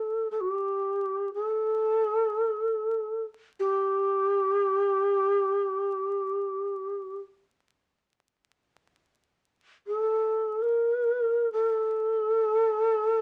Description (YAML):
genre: japanese traditional, Japanese chamber music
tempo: free time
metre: none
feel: none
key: unclear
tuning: A4 = 440 Hz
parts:
  - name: breathy bright long shakuhachi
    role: solo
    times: 0.0-13.2 s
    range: G4 to Bb4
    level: -27 LUFS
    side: equal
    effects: none
room: light reverb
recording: vinyl crackle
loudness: -27 LUFS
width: mono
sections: 0.0-13.2 A section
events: none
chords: none